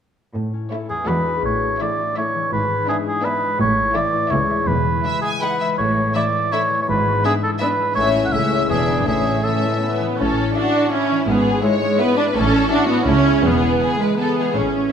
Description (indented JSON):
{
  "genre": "cinematic, playful, whimsical film cue",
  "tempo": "165 BPM",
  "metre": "3/4",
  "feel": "straight",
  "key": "A major",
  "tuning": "A4 = 440 Hz",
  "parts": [
    { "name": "concert harp", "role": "arpeggios", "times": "0.3-14.9 s", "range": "E2 to E5", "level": "-25 LUFS", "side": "left 8 dB", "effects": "none" },
    { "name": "warm studio cello section", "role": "bass", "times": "0.3-14.9 s", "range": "C#2 to A2", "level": "-25 LUFS", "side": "right 2 dB", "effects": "none" },
    { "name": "clear studio violin section", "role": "melody", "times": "0.7-14.5 s", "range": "C#5 to A5", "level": "-30 LUFS", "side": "left 2 dB", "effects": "none" },
    { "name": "warm studio violin section", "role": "second line", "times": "0.7-14.6 s", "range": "C#4 to C#5", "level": "-25 LUFS", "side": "left 3 dB", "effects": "none" },
    { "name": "rich studio viola section", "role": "accompaniment", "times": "0.7-14.9 s", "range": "G#3 to D4", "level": "-20 LUFS", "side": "right 2 dB", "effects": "none" },
    { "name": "warm oboe", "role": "second line", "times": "0.9-10.0 s", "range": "G#4 to F#5", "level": "-20 LUFS", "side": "right 1 dB", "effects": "none" },
    { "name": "clear studio double bass section", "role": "bass", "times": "1.4-14.9 s", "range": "E1 to C#2", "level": "-26 LUFS", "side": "right 2 dB", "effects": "none" }
  ],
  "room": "wet scoring stage reverb, RT60 1.7 s",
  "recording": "none",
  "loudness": "-16 LUFS",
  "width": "side -8 dB against mid",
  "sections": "0.3-1.4 A section; 1.4-10.2 B section; 10.2-14.9 B section",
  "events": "none",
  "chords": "0.3 A; 0.9 E9; 1.4 A; 2.5 E7/G#; 3.6 A; 4.3 A/C#; 4.7 E; 5.8 A; 6.9 E/G#; 8.0 A; 8.3 A/C#; 8.7 E7; 9.1 A; 11.3 E7/G#; 12.4 A; 13.1 A/C#; 13.4 E",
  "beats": "| 0.35 0.71 1.07 | 1.44 1.81 2.17 | 2.53 2.89 3.25 | 3.60 3.96 4.32 | 4.68 5.05 5.42 | 5.80 6.16 6.53 | 6.89 7.25 7.61 | 7.97 8.33 8.70 | 9.07 9.45 9.82 | 10.20 10.56 10.92 | 11.29 11.64 12.00 | 12.36 12.72 13.08 | 13.45 13.82 14.19 | 14.56"
}